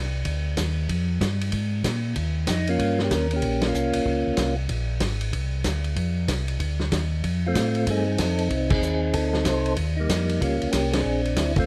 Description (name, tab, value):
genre	soul jazz organ trio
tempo	189 BPM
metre	4/4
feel	swing 63% on 8ths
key	unclear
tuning	A4 = 441 Hz
part	mellow tonewheel organ	bass	0.0-11.7 s	Ab1 to Bb2	-28 LUFS	equal	chorus vibrato, slow rotary speaker
part	warm soul drum kit	drums	0.2-11.6 s	crash cymbal, hi-hat, kick drum, ride cymbal, snare drum	-30 LUFS	equal	none
part	percussive tonewheel organ	melody	2.5-4.6, 7.5-11.7 s	G3 to C5	-27 LUFS	equal	slow rotary speaker
room	little or no reverb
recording	close, detailed microphones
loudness	-24 LUFS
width	mono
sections	0.0-11.7 A section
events	band accent 3.6, 8.7, 10.9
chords	0.0 Bb9; 2.2 Eb9; 4.7 Bb9; 7.2 F9; 9.8 Eb9; 11.0 Bbadd9